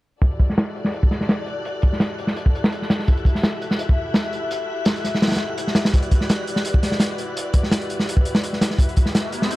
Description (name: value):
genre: drum and bass, jungle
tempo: 168 BPM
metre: 4/4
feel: swing 53% on 16ths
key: E minor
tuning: A4 = 441 Hz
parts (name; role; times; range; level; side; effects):
- dark studio string section; sustained chords; 0.2-9.6 s; E4 to E5; -28 LUFS; left 2 dB; none
- crunchy breakbeat drum kit; drums; 0.2-9.6 s; hi-hat, kick drum, snare drum; -18 LUFS; equal; low-pass filter on kick, low-pass filter on hats, low-pass filter on snare, low-pass filter on room
- wind-like tuned noise texture; texture; 0.7-9.6 s; F#6; -36 LUFS; equal; built-in reverb
- riser; sound effects; 9.0-9.6 s; none; -31 LUFS; left 1 dB; none
room: light reverb, studio ambience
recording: dark, warm production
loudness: -18 LUFS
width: side -18 dB against mid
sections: 0.2-9.6 A section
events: filter sweep on drum 0.2-9.6; riser 9.0-9.6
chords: 0.2 Em11